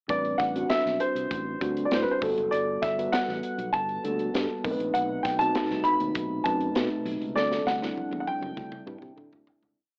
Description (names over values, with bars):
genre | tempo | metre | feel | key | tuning
polished 1980s jazz-funk pop | 99 BPM | 4/4 | straight | unclear | A4 = 437 Hz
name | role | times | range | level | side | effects
warm baby grand piano | melody | 0.1-9.1 s | B4 to B5 | -30 LUFS | equal | cassette tape
mellow tine electric piano | accompaniment | 0.1-9.8 s | G3 to B4 | -33 LUFS | equal | lush chorus, cassette tape
fingered electric bass | bass | 0.1-9.7 s | F#1 to D3 | -37 LUFS | equal | tube saturation
tight funk drum kit | drums | 0.1-9.8 s | hi-hat, kick drum, snare drum, toms | -36 LUFS | equal | cassette tape
pipe organ, stopped flute | sustained chords | 5.0-9.8 s | B2 to D#4 | -42 LUFS | equal | none
room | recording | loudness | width
moderate studio ambience, RT60 0.5 s | home recording on cassette, AM radio sound | -27 LUFS | mono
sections
0.1-9.8 verse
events
fade-out 7.4-9.8; drum fill 7.4-9.8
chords
0.1 Am11; 2.2 Gmaj9; 4.6 B7b9; 7.4 D7sus4